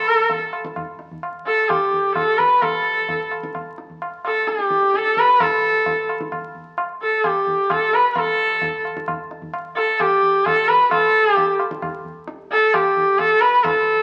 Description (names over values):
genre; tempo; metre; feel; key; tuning
indian classical, Hindustani; 130 BPM; 3/4; straight; unclear; A4 = 440 Hz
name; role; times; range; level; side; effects
warm sarangi; melody; 0.0-14.0 s; G4 to B4; -19 LUFS; equal; none
tabla; percussion; 0.3-13.8 s; none; -30 LUFS; equal; none
room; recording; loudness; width
wet club reverb, RT60 0.9 s; very old 78 rpm record, vinyl crackle; -18 LUFS; mono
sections
0.0-8.2 A section; 8.2-14.0 B section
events
none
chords
none